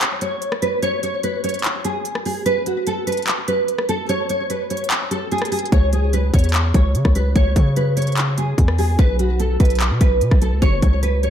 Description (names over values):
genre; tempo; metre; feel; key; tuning
hip hop, trap; 147 BPM; 4/4; half-time; C# minor; A4 = 439 Hz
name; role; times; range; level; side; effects
trap drum kit; drums; 0.0-11.3 s; handclaps, hi-hat, kick drum, rim click; -19 LUFS; equal; none
nylon-string guitar; melody; 0.2-11.3 s; F#4 to C#5; -21 LUFS; right 1 dB; ensemble chorus, ping-pong delay
hard-hitting 808-style bass; bass; 5.7-11.3 s; F#1 to C#3; -18 LUFS; equal; none
room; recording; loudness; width
moderate plate reverb, RT60 1.5 s, digital ambience; dreamy mix soaked in reverb; -16 LUFS; side -9 dB against mid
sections
0.0-11.3 A section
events
break 0.0-5.7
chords
0.0 N.C.; 5.7 C#m; 9.0 N.C.; 10.6 F#5